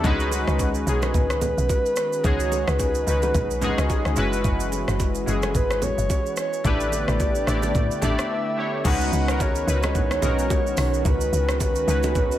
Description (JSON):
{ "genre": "amapiano", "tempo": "109 BPM", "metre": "4/4", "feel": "swing 58% on 16ths", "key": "unclear", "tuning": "A4 = 440 Hz", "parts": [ { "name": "warm analog keys", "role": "accompaniment", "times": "0.0-12.4 s", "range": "G#3 to D5", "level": "-26 LUFS", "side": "left 2 dB", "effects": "chorus" }, { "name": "warm analog pad", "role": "sustained chords", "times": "0.0-12.4 s", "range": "D3 to G4", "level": "-32 LUFS", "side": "right 3 dB", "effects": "lush chorus, sidechain pumping" }, { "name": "woody log drum bass", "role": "bass", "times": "0.0-12.4 s", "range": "F#1 to A2", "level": "-25 LUFS", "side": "equal", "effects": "none" }, { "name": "smooth R&B drum kit", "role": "drums", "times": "0.0-12.4 s", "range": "crash cymbal, hi-hat, kick drum, rim click, shaker", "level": "-26 LUFS", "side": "equal", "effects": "none" }, { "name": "congas and bongos", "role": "percussion", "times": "0.0-12.3 s", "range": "none", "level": "-32 LUFS", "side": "right 3 dB", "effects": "none" }, { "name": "breathy flute-like synth lead", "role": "melody", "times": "0.9-12.4 s", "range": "G#4 to F#5", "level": "-26 LUFS", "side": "equal", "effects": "chorus, digital delay" } ], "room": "light reverb", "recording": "none", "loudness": "-20 LUFS", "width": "side -12 dB against mid", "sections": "0.0-8.8 A section; 8.8-12.4 B section", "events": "break 8.3-8.8; drop 8.8-12.4", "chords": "0.0 C#9sus4; 4.2 F#9sus4; 6.6 A9sus4; 8.8 C#9sus4" }